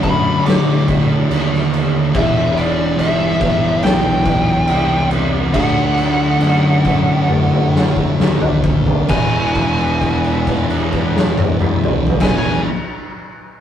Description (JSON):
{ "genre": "stoner and doom metal", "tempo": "66-71 BPM", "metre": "4/4", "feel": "straight", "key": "unclear", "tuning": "A4 = 440 Hz", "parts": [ { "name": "fuzz lead guitar", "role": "melody", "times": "0.0-12.6 s", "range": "D5 to D6", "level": "-20 LUFS", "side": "left 1 dB", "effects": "wah, distortion" }, { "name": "sludgy distorted guitar", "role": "riff", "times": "0.0-12.6 s", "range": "D3 to G4", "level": "-22 LUFS", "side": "equal", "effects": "none" }, { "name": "thick fuzz guitar", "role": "riff", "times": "0.0-12.6 s", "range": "E2 to D4", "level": "-20 LUFS", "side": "left 3 dB", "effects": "distortion" }, { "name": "thick fuzz guitar", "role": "riff", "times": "0.0-12.6 s", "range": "E2 to D4", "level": "-23 LUFS", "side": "right 7 dB", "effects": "distortion" }, { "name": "fuzz fingered electric bass", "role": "bass", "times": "0.0-12.6 s", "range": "E1 to A2", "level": "-23 LUFS", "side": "equal", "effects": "overdrive" }, { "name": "oversized low-tuned drum kit", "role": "drums", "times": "0.0-12.4 s", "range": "crash cymbal, kick drum, snare drum, toms", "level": "-18 LUFS", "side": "equal", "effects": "none" } ], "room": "light reverb", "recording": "rough rehearsal-room recording, tube saturation", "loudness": "-13 LUFS", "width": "side -10 dB against mid", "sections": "0.0-9.1 A section; 9.1-12.8 B section", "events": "slowing down 2.1-9.1; drum fill 7.3-9.1; held note 9.1-12.2", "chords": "0.0 D; 2.1 Em; 5.5 D; 9.1 E" }